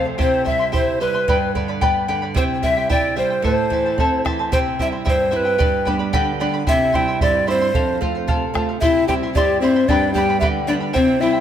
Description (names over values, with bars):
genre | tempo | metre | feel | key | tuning
andean folk, Andean ensemble | 112 BPM | 2/4 | straight | unclear | A4 = 440 Hz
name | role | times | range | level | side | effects
breathy mellow tenor recorder | melody | 0.0-11.4 s | B4 to G5 | -20 LUFS | right 1 dB | none
breathy bright pan flute | second line | 0.0-4.2, 8.8-11.4 s | C4 to G5 | -22 LUFS | left 6 dB | none
charango | accompaniment | 0.0-11.4 s | E4 to C6 | -24 LUFS | left 1 dB | none
nylon-string guitar | accompaniment | 0.0-11.4 s | F2 to F4 | -24 LUFS | right 4 dB | none
bombo | percussion | 0.2-11.1 s | none | -23 LUFS | right 1 dB | none
room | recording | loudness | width
moderate concert hall reverb, RT60 1.8 s | none | -16 LUFS | side -9 dB against mid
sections
0.0-4.5 A section; 4.5-11.4 A section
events
none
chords
0.2 C; 1.3 G; 2.4 C; 3.4 Am; 4.5 C; 5.6 G; 6.7 C; 7.7 F; 8.8 C; 9.9 G